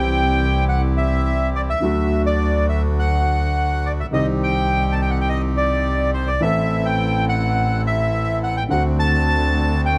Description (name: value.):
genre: tango.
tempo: 105 BPM.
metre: 4/4.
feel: rubato.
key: unclear.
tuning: A4 = 440 Hz.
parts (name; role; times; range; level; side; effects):
bandoneon; melody; 0.0-10.0 s; C5 to A5; -24 LUFS; equal; none.
warm concert grand piano; accompaniment; 0.0-10.0 s; A1 to A4; -26 LUFS; equal; none.
bandoneon; stabs; 0.0-10.0 s; A3 to A4; -33 LUFS; equal; none.
clear double bass; bass; 0.0-10.0 s; A1 to D2; -23 LUFS; equal; none.
room: light reverb.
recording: close, detailed microphones.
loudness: -19 LUFS.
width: mono.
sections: 0.0-10.0 A section.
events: none.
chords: 0.0 C; 1.8 D; 4.1 Cm; 6.4 Am; 8.7 D7.